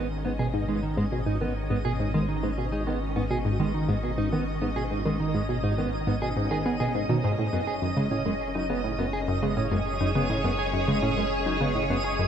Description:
ambient, sequencer-driven space music; 103 BPM; 4/4; straight; G# minor; A4 = 439 Hz
string machine, full ensemble; sustained chords; 0.0-12.3 s; Ab3 to Eb5; -32 LUFS; left 1 dB; ensemble chorus
mellow electric guitar; arpeggios; 0.0-12.1 s; D#3 to G#4; -31 LUFS; right 3 dB; auto-pan, tape echo
warm sub bass; bass; 0.0-12.3 s; F#1 to G#1; -34 LUFS; left 1 dB
twinkling granular texture; texture; 0.0-12.3 s; D#5; -37 LUFS; right 4 dB; built-in reverb
analog pluck; riff; 0.2-12.3 s; F#2 to B3; -28 LUFS; equal; chorus, tape echo
light reverb; cassette tape; -24 LUFS; side -8 dB against mid
0.0-12.3 A section
fade-in on string machine 0.0-12.3; fade-in on synth texture 0.0-12.3
0.0 G#m; 7.4 F#sus2

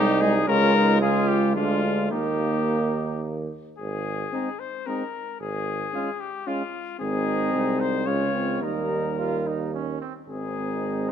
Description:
classical, brass quintet; 111 BPM; 3/4; straight; Ab major; A4 = 438 Hz
warm cornet; melody; 0.0-11.1 s; F4 to Db5; -28 LUFS; left 8 dB
mellow trumpet; second line; 0.0-11.1 s; C4 to F4; -31 LUFS; right 9 dB
clear trombone; accompaniment; 0.0-11.1 s; G3 to F4; -30 LUFS; right 4 dB
mellow French horn; accompaniment; 0.0-11.1 s; Ab3 to Db4; -28 LUFS; left 3 dB
clear tuba; bass; 0.0-11.1 s; Ab1 to Eb2; -28 LUFS; right 4 dB
moderate concert hall reverb, RT60 1.8 s; close, detailed microphones; -22 LUFS; side -8 dB against mid
0.0-3.8 A section; 3.8-11.1 B section
0.5 Db; 1.6 Ddim; 2.1 Eb; 3.8 Ab; 5.4 Db/Ab; 7.0 Ab; 8.1 Db; 8.6 Eb; 10.3 Ab

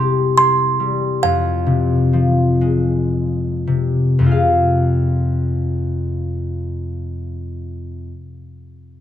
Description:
children's music, lullaby; 49-75 BPM; 3/4; rubato; F minor; A4 = 440 Hz
music box; melody; 0.0-3.1 s; F5 to C6; -18 LUFS; right 5 dB
concert harp; accompaniment; 0.0-8.1 s; F2 to F5; -17 LUFS; left 2 dB
light reverb; close, detailed microphones; -15 LUFS; side -11 dB against mid
0.0-4.3 A section; 4.3-7.8 B section
slowing down 0.0-4.3
0.0 C; 1.2 Fm

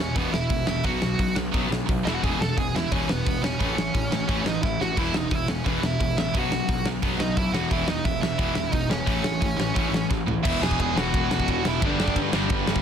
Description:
punk rock; 175 BPM; 4/4; straight; A4 = 440 Hz
smooth overdriven lead guitar; melody; 0.0-12.2 s; B3 to A5; -28 LUFS; right 3 dB
crunchy overdriven guitar; riff; 0.0-12.8 s; E2 to B3; -30 LUFS; left 12 dB
tight distorted guitar; riff; 0.0-12.8 s; E2 to B3; -30 LUFS; right 11 dB; distortion
fuzz picked electric bass; bass; 0.0-12.8 s; E1 to G2; -31 LUFS; equal; overdrive
big rock drum kit; drums; 0.2-12.8 s; crash cymbal, hi-hat, kick drum, ride cymbal, snare drum, splash cymbal, toms; -26 LUFS; equal
little or no reverb; dense, heavily limited modern master; -22 LUFS; side -8 dB against mid
0.0-10.5 A section; 10.5-12.8 B section
drum fill 4.6-5.0, 10.1-10.5
0.0 E5; 0.8 B5; 2.1 E; 3.6 A; 5.0 E5; 6.3 B; 7.5 E5; 9.1 A; 10.5 E; 11.8 G5

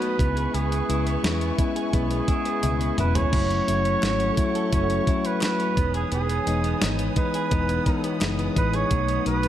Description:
1980s-style pop; 86 BPM; 4/4; straight; E major; A4 = 440 Hz
warm flugelhorn; melody; 0.0-9.5 s; G#4 to C#5; -27 LUFS; right 4 dB
mellow tine electric piano; accompaniment; 0.0-9.5 s; E3 to A4; -27 LUFS; left 5 dB
dark studio string section; sustained chords; 0.0-9.5 s; A4 to D#6; -35 LUFS; left 2 dB
direct-recorded clean electric guitar; riff; 0.0-9.5 s; F#3 to A4; -33 LUFS; right 7 dB; wide subtle chorus, digital delay
clean 12-bit digital drum machine; drums; 0.0-9.5 s; crash cymbal, hi-hat, kick drum, snare drum, toms; -26 LUFS; equal
vintage muted fingered electric bass; bass; 0.2-9.5 s; E1 to E2; -27 LUFS; equal
group handclap; percussion; 4.0-8.4 s; -42 LUFS; left 3 dB
moderate lush hall reverb, RT60 1.7 s; dark, warm production; -21 LUFS; side -11 dB against mid
0.0-9.5 A section
drum fill 2.6-3.3
0.2 C#m7; 3.3 F#m7; 5.8 Emaj7; 8.9 B7

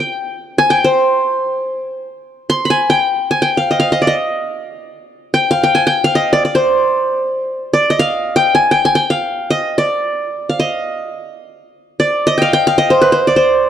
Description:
Arabic maqam ensemble; free time; C maqam nahawand; A4 = 440 Hz
qanun; solo; 0.0-13.7 s; B4 to C6; -12 LUFS; equal
light reverb, small room ambience; dry, close 1970s-style studio recording; -12 LUFS; side -9 dB against mid
0.0-2.3 A section; 2.3-13.7 A section

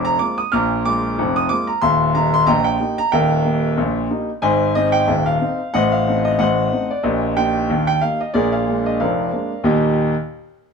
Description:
ragtime piano; 92 BPM; 2/4; swing 55% on 16ths; Eb major; A4 = 435 Hz
warm concert grand piano; solo; 0.0-10.1 s; Eb1 to F6; -16 LUFS; equal
moderate stone room reverb, RT60 1.1 s; band playing live in one room; -16 LUFS; side -5 dB against mid
0.0-9.7 A section; 9.7-10.7 B section
0.0 Bb7; 1.8 Eb; 4.4 Ab; 5.7 Adim; 7.0 Eb/Bb; 8.3 Bb7; 9.7 Eb

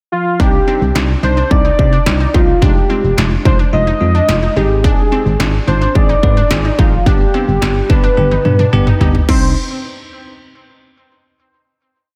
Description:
synth-pop; 108 BPM; 4/4; straight; C harmonic minor; A4 = 441 Hz
warm velvety synth lead; melody; 0.1-9.5 s; F4 to Eb5; -19 LUFS; equal; chorus, delay
bell-like tine electric piano; accompaniment; 0.4-9.5 s; Ab3 to B4; -24 LUFS; equal
unison pluck; arpeggios; 0.4-9.5 s; C4 to Eb4; -26 LUFS; equal; delay
solid FM bass; bass; 0.4-9.5 s; F1 to C3; -17 LUFS; equal
industrial drum kit; drums; 0.4-9.4 s; crash cymbal, kick drum, snare drum, toms; -17 LUFS; equal; distortion
light reverb; dense, heavily limited modern master; -13 LUFS; mono
0.0-0.4 pickup bar; 0.4-9.3 verse; 9.3-11.5 final chord
drum fill 8.2-9.3
0.4 Cmadd9; 2.6 Fm7; 4.6 Ab; 7.1 G; 9.3 N.C.

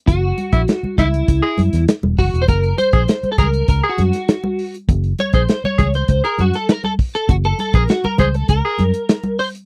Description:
funk; 100 BPM; 4/4; straight; F# mixolydian; A4 = 440 Hz
clean electric guitar; accompaniment; 0.1-9.5 s; E4 to C#5; -23 LUFS; equal; ensemble chorus
vintage muted fingered electric bass; bass; 0.1-8.9 s; E1 to F#2; -20 LUFS; equal
warm soul drum kit; drums; 0.1-9.7 s; hi-hat, kick drum, snare drum; -18 LUFS; equal
congas; percussion; 0.1-9.4 s; -27 LUFS; equal
breathy tenor saxophone; second line; 0.5-8.8 s; E4 to G#4; -22 LUFS; equal
little or no reverb; dry, close 1970s-style studio recording; -17 LUFS; mono
0.0-9.7 A section
clean electric guitar solo 0.0-9.7
0.0 F#7

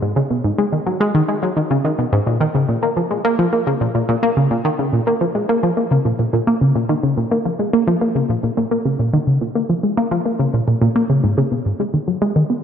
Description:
ambient; 107 BPM; 4/4; straight; Bb phrygian; A4 = 440 Hz
tight sequenced synth; solo; 0.0-12.5 s; Ab2 to Cb4; -16 LUFS; equal; chorus, ping-pong delay
wet plate reverb, RT60 2.8 s; echo-heavy mix; -16 LUFS; side -8 dB against mid
0.0-12.6 A section

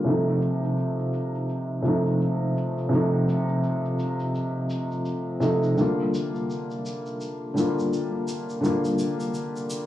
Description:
trip hop; 84 BPM; 4/4; swing 59% on 16ths; A4 = 439 Hz
felt-muted upright piano; accompaniment; 0.0-9.9 s; C3 to F4; -23 LUFS; equal; harmonic tremolo, tape echo
egg shaker; percussion; 0.1-9.9 s; -43 LUFS; equal
light reverb, small room ambience; home recording on cassette, low-pass filter, studio reverb; -23 LUFS; side -13 dB against mid
0.0-9.9 A section
filter sweep 0.0-9.9
0.1 F7; 5.8 Gm7

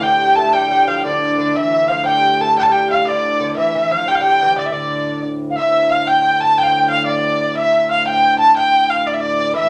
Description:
medieval dance; 120 BPM (dotted quarters); 6/8; straight; D minor; A4 = 440 Hz
warm erhu; melody; 0.0-9.7 s; D5 to A5; -17 LUFS; equal
bright reedy soprano recorder; second line; 0.0-9.7 s; D5 to A5; -24 LUFS; equal
lute; second line; 0.0-5.2, 9.5-9.7 s; D3 to A3; -26 LUFS; equal
hand-pumped harmonium; drone; 0.0-9.7 s; D2 to A2; -29 LUFS; equal
wet studio reverb, RT60 0.6 s; -16 LUFS; mono
0.0-5.6 A section; 5.6-9.7 A section
speeding up 0.0-9.7

